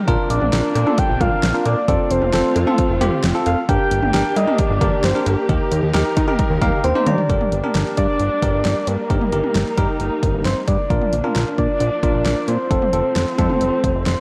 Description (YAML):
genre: synth-pop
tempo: 133 BPM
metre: 4/4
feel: straight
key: Bb major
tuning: A4 = 440 Hz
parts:
  - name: warm studio string section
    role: sustained chords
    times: 0.0-14.2 s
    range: Eb3 to Bb4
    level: -30 LUFS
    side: equal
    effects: none
  - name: bell-like tine electric piano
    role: accompaniment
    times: 0.1-14.0 s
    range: C4 to Bb5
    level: -26 LUFS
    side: equal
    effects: none
  - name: fat analog bass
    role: bass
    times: 0.1-14.2 s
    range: F1 to Eb3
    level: -23 LUFS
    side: equal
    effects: none
  - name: deep house drum kit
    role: drums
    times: 0.1-14.2 s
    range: cowbell, hi-hat, kick drum, snare drum, toms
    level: -24 LUFS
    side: equal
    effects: overdrive
  - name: soft octave-layered synth lead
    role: melody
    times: 0.3-14.2 s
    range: Bb4 to G5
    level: -24 LUFS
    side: equal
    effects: chorus, phaser
room: moderate concert hall reverb, RT60 2.2 s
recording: worn, warbling old tape, cassette tape, warbly pitch drift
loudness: -18 LUFS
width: mono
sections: 0.0-7.3 A section; 7.3-14.2 B section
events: tine electric piano fill 6.4-7.3; drum fill 6.8-7.3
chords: 0.1 Bbadd9; 1.9 F; 3.7 Gm; 5.5 Eb; 7.3 Gm; 9.1 Eb/G; 10.9 Bb; 12.7 F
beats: | 0.08 0.53 0.98 1.43 | 1.88 2.33 2.78 3.23 | 3.69 4.14 4.59 5.04 | 5.49 5.94 6.39 6.84 | 7.29 7.75 8.20 8.65 | 9.10 9.55 10.00 10.45 | 10.90 11.36 11.81 12.26 | 12.71 13.16 13.61 14.06